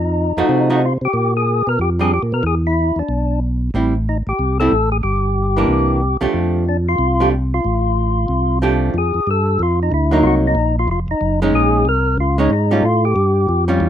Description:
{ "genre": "soul jazz organ trio", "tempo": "185 BPM", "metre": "4/4", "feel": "swing 62% on 8ths", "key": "F major", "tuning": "A4 = 438 Hz", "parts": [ { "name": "percussive tonewheel organ", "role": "melody", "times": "0.0-13.6 s", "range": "Db4 to Bb4", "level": "-19 LUFS", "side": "left 2 dB", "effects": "slow rotary speaker, overdrive" }, { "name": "tonewheel organ", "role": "bass", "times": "0.0-13.9 s", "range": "F1 to C3", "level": "-17 LUFS", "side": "equal", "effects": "overdrive, chorus vibrato, slow rotary speaker" }, { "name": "archtop guitar, miked and amplified", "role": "accompaniment", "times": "0.4-13.9 s", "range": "E3 to G4", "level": "-17 LUFS", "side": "right 2 dB", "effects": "none" } ], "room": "light reverb", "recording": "rough home demo mix", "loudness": "-14 LUFS", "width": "side -10 dB against mid", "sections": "0.0-8.9 A section; 8.9-13.9 B section", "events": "none", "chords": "0.0 F7b9; 1.1 Bb5; 2.4 E5; 3.7 Am7; 5.0 Gm; 5.7 C9; 6.3 F69; 10.2 Cm7b5; 10.9 Ebm11/F; 11.5 Bbm11; 12.8 A7b13" }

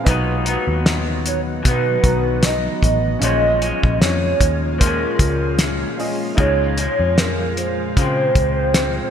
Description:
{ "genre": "indie pop, bedroom pop", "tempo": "76 BPM", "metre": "4/4", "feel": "swing 55% on 16ths", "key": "Db major", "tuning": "A4 = 440 Hz", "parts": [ { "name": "electric guitar through a small old amp", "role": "accompaniment", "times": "0.0-9.1 s", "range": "Bb2 to Eb4", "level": "-24 LUFS", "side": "left 4 dB", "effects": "lush chorus, vibrato effect" }, { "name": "warm upright piano", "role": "accompaniment", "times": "0.0-9.1 s", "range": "Cb4 to Bb5", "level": "-30 LUFS", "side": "right 3 dB", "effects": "cassette tape" }, { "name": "ethereal airy pad", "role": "sustained chords", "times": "0.0-9.1 s", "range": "Bb2 to Gb4", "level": "-28 LUFS", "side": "right 1 dB", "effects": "ensemble chorus, built-in reverb, phaser" }, { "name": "vintage muted picked electric bass", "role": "bass", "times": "0.1-9.0 s", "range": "A1 to Db3", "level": "-22 LUFS", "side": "equal", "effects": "none" }, { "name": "cloth-damped thuddy drum kit", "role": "drums", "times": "0.1-8.9 s", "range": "hi-hat, kick drum, snare drum", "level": "-19 LUFS", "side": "equal", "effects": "gated reverb" }, { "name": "hollow clarinet-like synth lead", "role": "melody", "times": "1.3-9.1 s", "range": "Bb4 to Eb5", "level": "-21 LUFS", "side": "right 1 dB", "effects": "analog chorus" } ], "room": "light reverb, small room ambience", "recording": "bright 1980s-style digital production", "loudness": "-16 LUFS", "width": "side -8 dB against mid", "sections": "0.0-9.1 A section", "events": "none", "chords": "0.1 Cb; 3.2 Bbm7; 6.4 Dbmaj7" }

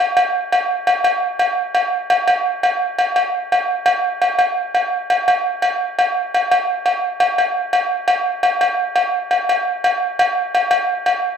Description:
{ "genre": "highlife", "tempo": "114 BPM (dotted quarters)", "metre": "12/8", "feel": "straight", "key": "none", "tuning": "none", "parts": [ { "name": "agogo bells", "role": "percussion", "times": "0.2-11.2 s", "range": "none", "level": "-15 LUFS", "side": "equal", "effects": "none" } ], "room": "light reverb", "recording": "dry, close 1970s-style studio recording", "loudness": "-15 LUFS", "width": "side -7 dB against mid", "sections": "0.0-11.1 A section", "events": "none", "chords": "none" }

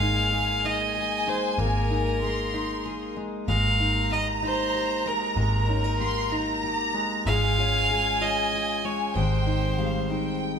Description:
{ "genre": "six-eight pop ballad", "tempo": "64 BPM (dotted quarters)", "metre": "6/8", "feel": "straight", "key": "Ab major", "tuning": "A4 = 440 Hz", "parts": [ { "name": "clear fiddle", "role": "melody", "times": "0.0-10.4 s", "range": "Bb4 to F5", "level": "-27 LUFS", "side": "right 1 dB", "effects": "none" }, { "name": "rich studio violin section", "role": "second line", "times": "0.0-10.6 s", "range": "F5 to C6", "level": "-30 LUFS", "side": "left 1 dB", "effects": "none" }, { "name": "warm concert grand piano", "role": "accompaniment", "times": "0.0-10.6 s", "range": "G3 to Ab4", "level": "-33 LUFS", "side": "right 1 dB", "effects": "none" }, { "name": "picked steel-string acoustic guitar", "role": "arpeggios", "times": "0.0-10.6 s", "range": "Eb3 to Ab4", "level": "-32 LUFS", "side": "left 4 dB", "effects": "none" }, { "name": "vintage muted fingered electric bass", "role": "bass", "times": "0.0-10.6 s", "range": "Ab1", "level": "-28 LUFS", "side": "equal", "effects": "none" } ], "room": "moderate large studio reverb, RT60 1.1 s", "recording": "band playing live in one room", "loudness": "-23 LUFS", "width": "side -7 dB against mid", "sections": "0.0-10.6 A section", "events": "none", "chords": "0.0 Absus2; 3.5 Eb/Ab; 7.3 Dbadd9/Ab; 9.2 Abmaj7" }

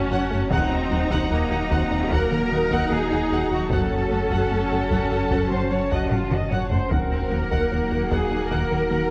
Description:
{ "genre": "cinematic, hybrid orchestral and electronic film score", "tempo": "75 BPM", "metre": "4/4", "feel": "straight", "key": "Eb dorian", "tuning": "A4 = 444 Hz", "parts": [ { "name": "warm symphonic violin section", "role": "melody", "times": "0.0-9.1 s", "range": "Gb5 to Bb5", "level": "-38 LUFS", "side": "equal", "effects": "none" }, { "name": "clear symphonic viola section", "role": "accompaniment", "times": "0.0-9.1 s", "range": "Bb3 to Eb4", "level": "-32 LUFS", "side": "equal", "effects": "none" }, { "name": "warbly tape-like pad", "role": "sustained chords", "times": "0.0-9.1 s", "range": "Gb3 to Gb5", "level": "-32 LUFS", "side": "equal", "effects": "chorus, built-in reverb" }, { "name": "resonant blip pluck", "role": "arpeggios", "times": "0.0-9.0 s", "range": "Eb3 to Gb4", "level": "-34 LUFS", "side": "equal", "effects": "none" }, { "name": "round analog bass", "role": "riff", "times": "0.0-9.0 s", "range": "Eb2 to Gb3", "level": "-31 LUFS", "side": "equal", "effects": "none" }, { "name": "clear symphonic cello section", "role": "bass", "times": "0.0-9.1 s", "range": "Db4 to Eb5", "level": "-29 LUFS", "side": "equal", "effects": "none" }, { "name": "pure sine sub bass", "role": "bass", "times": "0.0-9.1 s", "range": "Eb1 to Gb1", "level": "-34 LUFS", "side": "equal", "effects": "none" }, { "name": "rich studio violin section", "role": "second line", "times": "0.1-9.0 s", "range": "Gb5", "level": "-35 LUFS", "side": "equal", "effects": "none" }, { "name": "rich symphonic double bass section", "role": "bass", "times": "0.1-9.0 s", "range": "Eb2 to Gb2", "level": "-34 LUFS", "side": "equal", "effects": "none" }, { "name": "taiko ensemble", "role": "drums", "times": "0.5-9.1 s", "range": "none", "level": "-31 LUFS", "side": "equal", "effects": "none" } ], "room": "wet scoring stage reverb, RT60 2.2 s", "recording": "worn, warbling old tape, cassette tape, warbly pitch drift", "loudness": "-23 LUFS", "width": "mono", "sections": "0.0-9.1 A section", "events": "drum fill 6.1-6.9", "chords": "0.0 Gbm; 0.5 Ebm; 3.7 Gbm; 6.9 Ebm" }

